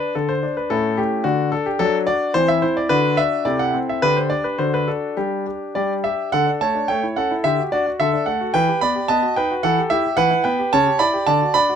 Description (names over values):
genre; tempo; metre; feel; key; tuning
classical-period piano sonatina; 109 BPM; 2/4; rubato; G major, D major from 6.3 s; A4 = 440 Hz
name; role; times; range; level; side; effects
clear concert grand piano; solo; 0.0-11.8 s; A2 to B5; -17 LUFS; equal; none
room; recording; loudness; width
little or no reverb; close, detailed microphones; -17 LUFS; side -8 dB against mid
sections
0.0-6.3 A section; 6.3-11.8 B section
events
none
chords
0.0 N.C.; 0.7 A7; 1.3 N.C.; 1.8 D/F#; 2.4 C/E; 2.9 Bm/D; 3.5 Am/C; 4.0 G5/D; 4.6 D; 5.2 G5; 6.3 D; 6.9 A7; 7.4 D; 8.5 Em; 9.1 B7; 9.6 Em; 10.7 A7/C#